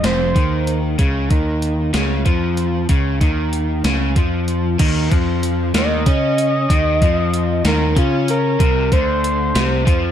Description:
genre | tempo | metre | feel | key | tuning
indie rock | 63 BPM (dotted quarters) | 6/8 | straight | unclear | A4 = 436 Hz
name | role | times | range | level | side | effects
overdriven synth lead | melody | 0.0-0.7, 5.8-10.1 s | F4 to Eb5 | -20 LUFS | equal | distortion, slapback echo, plate reverb
overdriven electric guitar | riff | 0.0-10.1 s | F2 to Db4 | -21 LUFS | equal | none
growling picked electric bass | bass | 0.0-10.1 s | F1 to Db3 | -20 LUFS | equal | overdrive
gated 80s digital drum machine | drums | 0.0-10.0 s | crash cymbal, hi-hat, kick drum, snare drum | -18 LUFS | equal | gated reverb, gated reverb snare, overdrive
room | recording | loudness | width
light reverb | dark, warm production | -15 LUFS | side -10 dB against mid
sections
0.0-4.8 A section; 4.8-10.1 B section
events
analog synth lead solo 4.8-10.1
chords
0.0 F7(no3); 1.0 Db; 4.8 Bbmadd11/Eb (rootless); 8.6 Csus4

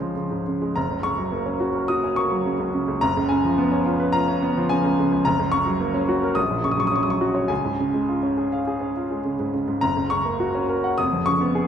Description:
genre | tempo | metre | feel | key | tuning
classical, virtuoso piano study | 106 BPM | 4/4 | rubato | F# major | A4 = 440 Hz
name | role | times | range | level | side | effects
clear baby grand piano | solo | 0.0-11.7 s | E#1 to D#6 | -20 LUFS | equal | none
room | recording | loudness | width
wet recital hall reverb, RT60 1.8 s | dark, warm production | -20 LUFS | side -8 dB against mid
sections
0.8-11.7 A section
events
none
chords
0.0 C#; 0.8 F#; 3.0 C#7/F#; 5.3 F#; 6.4 F#/A#; 7.5 C#; 9.8 F#; 11.0 C#7/E#

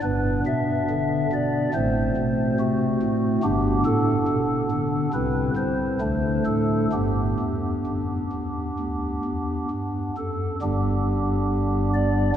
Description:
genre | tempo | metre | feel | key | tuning
classical, chorale-style piece for pipe organ | 64-71 BPM | 4/4 | rubato | G major | A4 = 440 Hz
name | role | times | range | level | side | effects
pipe organ, stopped flute | solo | 0.0-12.3 s | G1 to E5 | -21 LUFS | equal | none
room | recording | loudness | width
wet cathedral reverb, RT60 5.0 s | nothing above 10.4 kHz | -21 LUFS | side -9 dB against mid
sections
0.0-10.6 A section; 10.6-12.4 B section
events
none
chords
0.0 G; 1.7 F#dim/A; 3.4 G; 5.1 C; 6.0 D5; 6.9 G

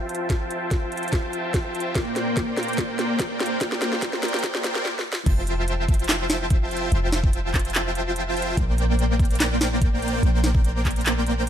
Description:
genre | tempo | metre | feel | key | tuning
future bass | 145 BPM | 4/4 | swing 53% on 16ths, half-time | F major | A4 = 440 Hz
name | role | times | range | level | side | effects
dense compressed supersaw | riff | 0.0-11.5 s | Bb3 to A5 | -26 LUFS | equal | sidechain pumping, low-pass filter, digital delay
trap drum kit | drums | 0.1-11.5 s | crash cymbal, handclaps, hi-hat, snare drum | -26 LUFS | equal | none
electronic kick drum | drums | 0.3-10.9 s | none | -22 LUFS | equal | none
warm 808-style bass | bass | 5.3-11.5 s | F1 to Bb1 | -24 LUFS | equal | sidechain pumping
room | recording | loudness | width
light reverb | high-pass filter, lossy compression artefacts | -21 LUFS | side -10 dB against mid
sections
0.0-5.3 A section; 5.3-11.5 B section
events
build-up 0.0-5.3; drum fill 0.0-4.9, 4.9-5.3; filter sweep on supersaw synth 0.0-5.3; filter sweep 0.0-5.3; drop 5.3-11.5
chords
0.0 Fmaj7; 2.0 Bb6; 5.3 Fmaj7; 8.6 Bb6

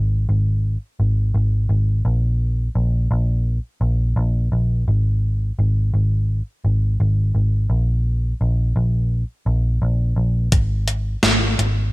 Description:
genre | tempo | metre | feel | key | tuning
dream pop | 85 BPM | 4/4 | straight | unclear | A4 = 440 Hz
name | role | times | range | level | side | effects
vintage muted picked electric bass | bass | 0.0-11.9 s | Ab1 to Bb1 | -17 LUFS | equal | none
crisp 8-bit digital drum machine | drums | 10.5-11.8 s | hi-hat, kick drum, snare drum | -17 LUFS | equal | gated reverb
room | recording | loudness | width
little or no reverb | bright 1980s-style digital production | -17 LUFS | side -20 dB against mid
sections
0.0-11.9 A section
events
none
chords
none

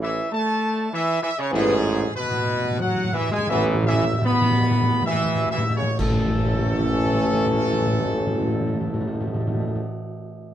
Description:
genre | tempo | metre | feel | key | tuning
classical, ceremonial fanfare | 62-100 BPM | 3/4 | straight | A major | A4 = 440 Hz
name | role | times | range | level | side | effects
mellow trumpet section | melody | 0.0-9.8 s | G#4 to B5 | -26 LUFS | equal | none
bright trombone section | sustained chords | 0.0-9.8 s | G#2 to B3 | -26 LUFS | equal | none
warm tuba | bass | 0.0-9.8 s | A1 | -26 LUFS | right 3 dB | none
mellow French horn section | sustained chords | 1.5-9.8 s | E3 to C#4 | -26 LUFS | left 1 dB | none
timpani | percussion | 1.5-9.8 s | A2 | -24 LUFS | equal | none
clash cymbals and concert bass drum | percussion | 6.0-7.8 s | none | -32 LUFS | equal | none
room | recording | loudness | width
light reverb | worn, warbling old tape, cassette tape, warbly pitch drift | -20 LUFS | side -11 dB against mid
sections
0.0-6.0 A section; 6.0-10.5 B section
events
slowing down 0.6-6.0; timpani fill 1.5-6.0; band accent 6.0-6.9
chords
0.0 A5; 1.5 E/A; 6.0 A

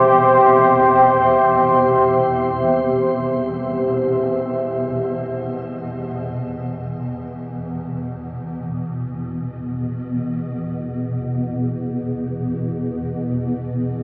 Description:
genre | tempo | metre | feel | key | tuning
dark ambient drone | free time | none | none | unclear | A4 = 440 Hz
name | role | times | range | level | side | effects
deep dark ambient pad | sustained chords | 0.0-4.4 s | G4 to E5 | -14 LUFS | equal | chorus, built-in reverb, shimmer reverb
swarming drone | drone | 0.0-14.0 s | E2 to B2 | -23 LUFS | equal | built-in reverb
room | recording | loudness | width
wet cathedral reverb, RT60 5.2 s | AM radio sound | -17 LUFS | side -27 dB against mid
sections
0.0-4.4 A section; 4.4-14.0 B section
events
none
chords
0.0 C; 4.4 E5

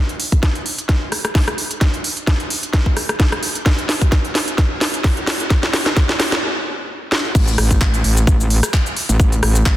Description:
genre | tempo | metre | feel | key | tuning
bass house | 130 BPM | 4/4 | swing 55% on 16ths | unclear | A4 = 439 Hz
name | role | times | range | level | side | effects
garage drum kit | drums | 0.1-9.8 s | cabasa, crash cymbal, handclaps, hi-hat, rim click, snare drum | -19 LUFS | equal | soft clipping on snare
electronic kick drum | drums | 0.3-9.8 s | none | -16 LUFS | equal | none
metallic wobble bass | bass | 7.3-9.8 s | A1 | -15 LUFS | equal | chorus, overdrive, sidechain pumping
room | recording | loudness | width
light reverb | dense, heavily limited modern master | -15 LUFS | side -14 dB against mid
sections
0.0-7.3 A section; 7.3-9.8 B section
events
build-up 0.0-7.3; drum fill 0.0-6.4, 7.1; stop 6.4-7.3; drop 7.3-9.8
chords
none

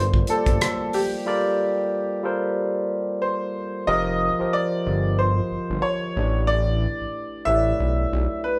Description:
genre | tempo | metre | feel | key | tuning
R&B, neo-soul | 92 BPM | 4/4 | swing 58% on 16ths | unclear | A4 = 440 Hz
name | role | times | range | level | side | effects
clear grand piano | melody | 0.0-8.6 s | G4 to E5 | -28 LUFS | equal | none
barky tine electric piano | accompaniment | 0.0-8.6 s | F3 to Eb5 | -28 LUFS | equal | none
fat analog bass | bass | 0.0-8.3 s | F1 to B1 | -27 LUFS | equal | none
cloth-damped thuddy drum kit | drums | 0.1-1.1 s | hi-hat, kick drum, rim click | -27 LUFS | equal | none
congas | percussion | 0.1-1.1 s | none | -44 LUFS | equal | none
room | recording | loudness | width
moderate large studio reverb, RT60 1.1 s | band playing live in one room | -23 LUFS | mono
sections
0.0-3.9 A section; 3.9-8.6 B section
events
break 1.3-3.9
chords
0.0 Gm11; 3.9 F9sus4; 6.1 A9sus4

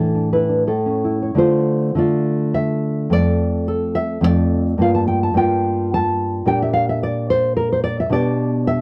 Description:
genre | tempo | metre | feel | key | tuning
romantic piece for solo classical guitar | 107 BPM | 3/4 | uneven beats, rubato | D minor | A4 = 438 Hz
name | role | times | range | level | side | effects
nylon-string guitar | solo | 0.0-8.8 s | F2 to A5 | -18 LUFS | equal | none
room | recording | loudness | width
light reverb | dry, close 1970s-style studio recording | -18 LUFS | mono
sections
0.0-1.4 A section; 1.4-8.8 B section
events
none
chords
0.0 Asus4; 0.7 A; 1.4 Dm; 3.1 Dm/F; 4.8 Gm7; 6.5 Gm/Bb; 8.1 G/B

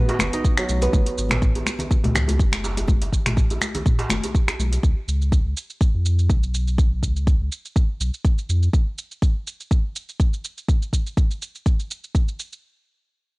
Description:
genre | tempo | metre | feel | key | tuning
afro house | 123 BPM | 4/4 | swing 54% on 16ths | unclear | A4 = 440 Hz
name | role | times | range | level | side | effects
kora | arpeggios | 0.0-2.9 s | D#3 to F#4 | -27 LUFS | right 2 dB | sidechain pumping, low-pass filter, analog delay
afro-pop drum kit | drums | 0.1-12.6 s | finger snaps, hi-hat, shaker, toms | -26 LUFS | right 1 dB | studio ambience
djembe | percussion | 0.1-4.8 s | none | -31 LUFS | right 2 dB | none
warm sub bass | bass | 0.2-8.7 s | F#1 to E#2 | -22 LUFS | equal | sidechain pumping
congas | percussion | 0.2-4.8 s | none | -29 LUFS | left 2 dB | none
electronic kick drum | drums | 0.4-12.3 s | none | -19 LUFS | equal | studio ambience
room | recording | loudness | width
small room ambience | dry, gritty hardware recording, cassette tape | -19 LUFS | side -24 dB against mid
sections
0.0-12.6 A section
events
none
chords
0.0 G#m7; 4.8 C#7; 12.6 N.C.

